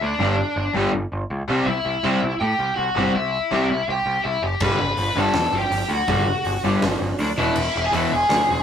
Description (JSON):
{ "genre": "punk rock", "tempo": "163 BPM", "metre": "4/4", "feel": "straight", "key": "unclear", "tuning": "A4 = 439 Hz", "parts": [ { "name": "lead guitar through a small cranked amp", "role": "melody", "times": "0.0-8.6 s", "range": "D4 to B5", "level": "-22 LUFS", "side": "left 1 dB", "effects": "overdrive" }, { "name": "growling picked electric bass", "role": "bass", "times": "0.0-8.6 s", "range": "E1 to A2", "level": "-26 LUFS", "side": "equal", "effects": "overdrive" }, { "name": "cranked stack guitar", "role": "riff", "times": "0.2-8.1 s", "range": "E2 to C4", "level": "-25 LUFS", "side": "left 2 dB", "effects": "overdrive" }, { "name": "overdriven semi-hollow guitar", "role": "riff", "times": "0.2-8.1 s", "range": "E2 to C4", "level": "-23 LUFS", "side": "right 1 dB", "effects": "none" }, { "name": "big rock drum kit", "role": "drums", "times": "4.6-8.4 s", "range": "crash cymbal, hi-hat, kick drum, snare drum", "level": "-26 LUFS", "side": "right 1 dB", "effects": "none" } ], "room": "moderate booth ambience, RT60 0.3 s", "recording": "rough rehearsal-room recording, tube saturation", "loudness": "-19 LUFS", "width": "side -8 dB against mid", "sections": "0.0-8.6 A section", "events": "half time 0.0-8.6", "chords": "0.0 G5; 1.5 C; 4.6 G; 7.4 E" }